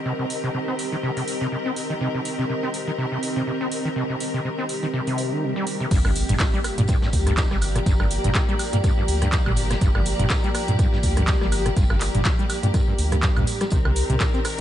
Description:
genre	acid house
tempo	123 BPM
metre	4/4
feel	swing 56% on 16ths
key	G minor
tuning	A4 = 440 Hz
part	rich studio string section	sustained chords	0.0-14.6 s	Eb3 to Bb4	-30 LUFS	left 2 dB	sidechain pumping
part	granular cloud pad	texture	0.0-14.6 s	C4 to Bb5	-30 LUFS	right 1 dB	built-in reverb, sidechain pumping
part	overdriven acid bass	riff	0.1-14.6 s	G2 to C4	-27 LUFS	equal	distortion, lush chorus, sidechain pumping, ping-pong delay
part	booming analog drum machine	drums	0.3-14.6 s	crash cymbal, handclaps, hi-hat, rim click, shaker, toms, woodblock	-28 LUFS	right 1 dB	none
part	swell and sub drop	sound effects	5.1-7.9 s	none	-33 LUFS	right 1 dB	none
part	saturated sub bass	bass	5.9-14.6 s	G1 to G2	-24 LUFS	equal	sidechain pumping
part	electronic kick drum	drums	5.9-14.3 s	none	-22 LUFS	equal	none
part	vintage brush drum kit	drums	5.9-14.6 s	hi-hat, snare drum, tambourine	-38 LUFS	equal	high-pass filter on hats, high-pass filter on snare, high-pass filter on perc, high-pass filter on room
room	light reverb, digital ambience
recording	nothing above 10.3 kHz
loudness	-20 LUFS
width	side -12 dB against mid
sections	0.0-5.9 A section; 5.9-14.6 B section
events	swell 5.1-5.9; drop 5.9-14.6; impact 5.9-7.9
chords	0.0 Cm7; 5.9 Gm7; 13.7 Cm7

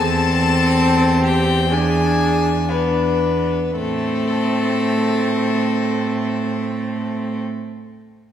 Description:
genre	classical, slow romantic movement for string quartet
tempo	54-72 BPM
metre	4/4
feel	rubato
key	A minor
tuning	A4 = 439 Hz
part	rich violin	melody	0.0-7.4 s	A4 to A5	-23 LUFS	left 6 dB	none
part	rich violin	second line	0.0-7.4 s	A3 to A4	-24 LUFS	left 2 dB	none
part	rich viola	accompaniment	0.0-7.4 s	C4 to D4	-21 LUFS	equal	none
part	rich cello	bass	0.0-7.4 s	E2 to A2	-21 LUFS	right 3 dB	none
room	wet scoring stage reverb, RT60 1.6 s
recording	heard from further back in the room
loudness	-16 LUFS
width	side -9 dB against mid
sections	0.0-3.8 A section; 3.8-7.9 B section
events	slowing down 0.0-3.8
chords	0.0 Am/E; 1.7 E7; 3.8 Am

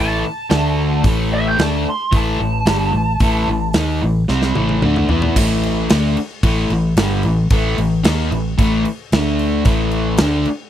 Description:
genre	blues rock power trio and southern rock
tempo	112 BPM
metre	4/4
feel	straight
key	unclear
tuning	A4 = 440 Hz
part	lead guitar through a small cranked amp	melody	0.0-3.7 s	E5 to C6	-22 LUFS	right 2 dB	wah, overdrive
part	crunchy overdriven guitar	riff	0.0-10.5 s	G2 to E4	-18 LUFS	left 1 dB	none
part	vintage muted fingered electric bass	bass	0.0-10.5 s	G1 to E2	-20 LUFS	equal	none
part	big rock drum kit	drums	0.5-10.6 s	crash cymbal, hi-hat, kick drum, snare drum, toms	-18 LUFS	equal	none
room	little or no reverb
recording	dry, close 1970s-style studio recording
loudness	-14 LUFS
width	side -11 dB against mid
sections	0.0-5.4 A section; 5.4-10.7 B section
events	lead electric guitar solo 0.0-5.4; drum fill 4.3-5.4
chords	0.0 A5; 0.5 D5; 1.1 A5; 9.1 D5; 9.7 A5

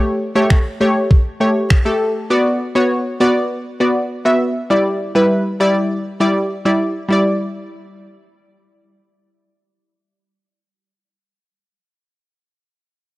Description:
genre	dance-pop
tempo	100 BPM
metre	4/4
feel	straight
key	E dorian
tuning	A4 = 440 Hz
part	analog pluck	accompaniment	0.0-11.0 s	G3 to E5	-15 LUFS	equal	chorus, sidechain pumping, cassette tape
part	crisp 8-bit digital drum machine	drums	0.5-1.8 s	finger snaps, kick drum	-12 LUFS	equal	cassette tape
room	digital ambience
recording	home recording on cassette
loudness	-14 LUFS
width	side -18 dB against mid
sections	0.0-7.1 A section; 7.1-9.5 B section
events	none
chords	0.0 A7; 2.3 Bm; 4.7 Em7

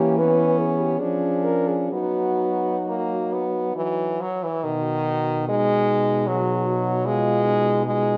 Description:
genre	classical, lyrical piece for horn quartet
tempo	60-80 BPM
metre	3/4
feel	rubato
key	B major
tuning	A4 = 439 Hz
part	dark French horn	melody	0.0-8.2 s	D#4 to B4	-30 LUFS	equal	none
part	mellow French horn	second line	0.0-8.2 s	A#3 to G#4	-32 LUFS	equal	none
part	clear French horn	accompaniment	0.0-8.2 s	D#3 to D4	-25 LUFS	equal	none
part	mellow French horn	bass	0.0-8.2 s	B2 to F#3	-29 LUFS	equal	none
room	wet recital hall reverb, RT60 1.3 s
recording	dark, warm production, nothing above 7.9 kHz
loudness	-22 LUFS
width	mono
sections	0.0-4.6 A section; 4.6-8.2 B section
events	none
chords	0.0 C#m7b5/E; 1.0 A#7#9/E#; 1.9 B/F#; 3.8 Esus2; 4.6 B; 7.1 C#7/B (rootless)

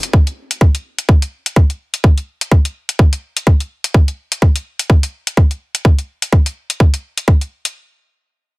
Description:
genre	bass house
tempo	126 BPM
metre	4/4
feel	swing 57% on 16ths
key	none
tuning	none
part	electronic hi-hat	drums	0.0-7.7 s	none	-19 LUFS	left 2 dB	none
part	electronic kick drum	drums	0.1-7.4 s	none	-9 LUFS	equal	none
room	digital ambience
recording	none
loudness	-13 LUFS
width	side -22 dB against mid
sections	0.0-7.8 A section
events	none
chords	none

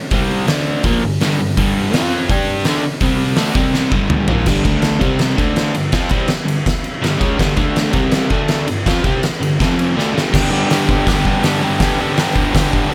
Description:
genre	garage rock duo or trio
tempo	164 BPM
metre	4/4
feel	straight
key	G mixolydian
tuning	A4 = 440 Hz
part	crunchy overdriven guitar	riff	0.1-12.9 s	F2 to G4	-19 LUFS	equal	none
part	oversized low-tuned drum kit	drums	0.1-12.8 s	crash cymbal, hi-hat, kick drum, ride cymbal, snare drum, toms	-20 LUFS	equal	none
room	light reverb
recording	none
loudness	-16 LUFS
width	mono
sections	0.0-4.5 A section; 4.5-10.3 B section; 10.3-12.9 C section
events	drum fill 3.7-4.5, 10.0-10.3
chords	0.1 C5; 0.5 D5; 0.8 G5; 1.9 F5; 2.3 G5; 3.0 C5; 3.4 D5; 3.6 C5; 3.9 G5; 4.7 D5; 5.0 C5; 5.4 D5; 5.7 G5; 7.6 D5; 7.9 C5; 8.3 D5; 8.7 G5; 9.6 F5; 10.0 G5; 10.3 G

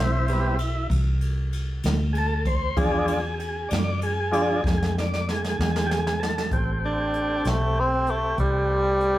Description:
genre	slow blues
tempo	64 BPM (dotted quarters)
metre	12/8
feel	straight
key	A minor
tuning	A4 = 440 Hz
part	tonewheel organ	sustained chords	0.0-9.2 s	F3 to D5	-26 LUFS	equal	slow rotary speaker
part	vintage muted fingered electric bass	bass	0.0-9.2 s	A1 to F#2	-26 LUFS	equal	none
part	jazz brush drum kit	drums	0.3-9.2 s	hi-hat, kick drum, ride cymbal, snare drum	-28 LUFS	right 1 dB	none
part	warm tenor saxophone	melody	6.9-9.2 s	G3 to D4	-23 LUFS	equal	none
room	moderate studio reverb, RT60 0.6 s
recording	rough rehearsal-room recording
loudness	-22 LUFS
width	side -15 dB against mid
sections	0.0-6.5 A section; 6.5-9.2 A section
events	tonewheel organ solo 0.0-6.5; drum fill 4.6-6.5; tenor saxophone solo 6.5-9.2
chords	0.0 Am7; 2.8 E7b9; 6.5 Am7

